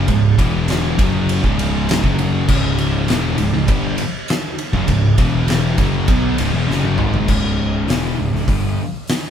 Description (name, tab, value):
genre	stoner and doom metal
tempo	100 BPM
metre	4/4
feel	straight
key	C# minor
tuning	A4 = 440 Hz
part	heavy high-gain guitar	riff	0.0-7.3 s	C#2 to B3	-23 LUFS	right 2 dB	distortion
part	thick fuzz guitar	riff	0.0-8.8 s	C#2 to B3	-21 LUFS	left 7 dB	distortion
part	thick fuzz guitar	riff	0.0-8.8 s	C#2 to B3	-22 LUFS	right 6 dB	distortion
part	fuzz picked electric bass	bass	0.0-8.8 s	C#1 to B1	-23 LUFS	equal	overdrive
part	oversized low-tuned drum kit	drums	0.1-9.2 s	crash cymbal, hi-hat, kick drum, ride cymbal, snare drum, toms	-19 LUFS	equal	none
room	light reverb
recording	band playing live in one room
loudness	-15 LUFS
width	side -8 dB against mid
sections	0.0-7.3 A section; 7.3-9.3 B section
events	drum fill 6.7-7.3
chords	0.4 E5; 1.0 C#m; 5.2 E5; 5.8 C#m